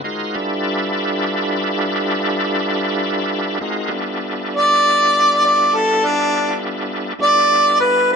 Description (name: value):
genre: blues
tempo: 67 BPM (dotted quarters)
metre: 12/8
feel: straight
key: unclear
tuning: A4 = 440 Hz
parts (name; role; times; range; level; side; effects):
- bright tonewheel organ; sustained chords; 0.0-8.2 s; G3 to C5; -20 LUFS; equal; slow rotary speaker, overdrive, chorus vibrato
- warm harmonica; melody; 4.6-8.2 s; D4 to D5; -13 LUFS; equal; overdrive
room: moderate club reverb, RT60 0.8 s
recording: none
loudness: -15 LUFS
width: side -6 dB against mid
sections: 0.0-8.2 A section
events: none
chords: 0.1 G13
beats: | 0.06 0.95 1.84 2.73 | 3.63 4.52 5.41 6.30 | 7.19 8.08